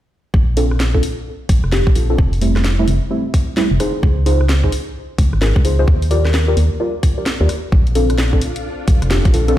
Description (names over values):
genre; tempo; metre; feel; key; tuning
UK garage, two-step garage; 130 BPM; 4/4; swing 63% on 16ths; Bb major; A4 = 439 Hz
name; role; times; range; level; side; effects
organ-like FM bass; bass; 0.3-9.6 s; F1 to Eb2; -15 LUFS; equal; tube saturation, sidechain pumping
electronic kick drum; drums; 0.3-9.3 s; none; -14 LUFS; equal; none
deep mellow chord stab; stabs; 0.6-9.6 s; G3 to D5; -20 LUFS; equal; chorus, ping-pong delay
garage drum kit; drums; 0.6-9.6 s; hi-hat, rim click, snare drum; -24 LUFS; equal; none
soft string machine; sustained chords; 7.7-9.6 s; C4 to A4; -28 LUFS; left 1 dB; ensemble chorus, sidechain pumping
room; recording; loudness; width
little or no reverb; played on a big sound system in a bare room, stone room reverb; -14 LUFS; side -13 dB against mid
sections
0.3-9.6 A section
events
none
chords
0.3 Bbmaj9; 2.2 Fmaj9; 4.0 Dbmaj9; 5.9 Ebmaj9; 7.7 Bbmaj9